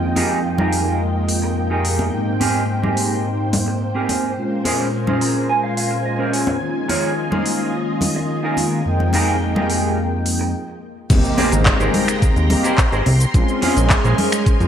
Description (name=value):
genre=nu-disco, nu disco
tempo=107 BPM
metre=4/4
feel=straight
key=Ab major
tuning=A4 = 440 Hz
part: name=mellow synth brass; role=accompaniment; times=0.0-14.7 s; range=F2 to G5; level=-21 LUFS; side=equal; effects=chorus, sidechain pumping, digital delay
part: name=string machine, full ensemble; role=sustained chords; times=0.0-14.7 s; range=Ab3 to C6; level=-26 LUFS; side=left 1 dB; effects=ensemble chorus, sidechain pumping
part: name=mellow electric guitar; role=riff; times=0.2-14.5 s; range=C4 to Bb5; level=-23 LUFS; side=right 2 dB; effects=analog chorus, low-pass filter, digital delay
part: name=pop drum kit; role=drums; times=0.2-14.7 s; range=crash cymbal, finger snaps, handclaps, hi-hat, shaker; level=-24 LUFS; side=left 1 dB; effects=gated reverb
part: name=congas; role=percussion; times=0.2-14.3 s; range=none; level=-25 LUFS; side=left 1 dB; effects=none
part: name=fat analog bass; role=bass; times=11.1-14.7 s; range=Ab1 to F2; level=-17 LUFS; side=equal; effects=none
part: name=electronic kick drum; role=drums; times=11.1-14.6 s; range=none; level=-16 LUFS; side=equal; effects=none
part: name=impact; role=sound effects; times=11.1-13.3 s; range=none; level=-27 LUFS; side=equal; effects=none
room=moderate plate reverb, RT60 1.8 s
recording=bright 1980s-style digital production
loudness=-16 LUFS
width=side -9 dB against mid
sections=0.0-11.1 A section; 11.1-14.7 B section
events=filter sweep on string machine 0.0-11.1; clean electric guitar fill 4.9-6.6; stop 10.5-11.1; drop 11.1-14.7; impact 11.1-13.3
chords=0.0 Fm11; 2.1 Abmaj9; 4.4 Bbm9; 6.6 Eb9sus4; 8.9 Fm11; 11.1 Abmaj9; 13.3 Bbm9